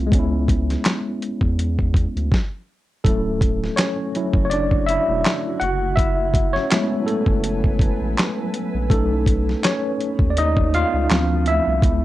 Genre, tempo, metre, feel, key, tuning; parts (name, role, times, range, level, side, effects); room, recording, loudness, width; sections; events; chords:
lo-fi hip hop; 82 BPM; 4/4; swing 55% on 16ths; A4 = 440 Hz
tine electric piano; accompaniment; 0.0-12.0 s; F3 to F#5; -21 LUFS; left 1 dB; overdrive, fast stereo tremolo, cassette tape, low-pass filter
saturated sub bass; bass; 0.0-12.0 s; D1 to E2; -23 LUFS; equal
dusty soul sampler-style drum kit; drums; 0.1-12.0 s; handclaps, hi-hat, kick drum, snare drum; -19 LUFS; equal; overdrive
granular cloud pad; sustained chords; 4.0-12.0 s; D3 to A5; -31 LUFS; right 2 dB; built-in reverb, low-pass filter
light reverb; -18 LUFS; side -15 dB against mid
0.0-3.0 A section; 3.0-12.0 B section
stop 2.3-3.0; tine electric piano solo 3.0-12.0
0.1 C#m7; 3.0 Dmaj9; 5.6 F#m11; 8.9 B9; 11.1 Dm7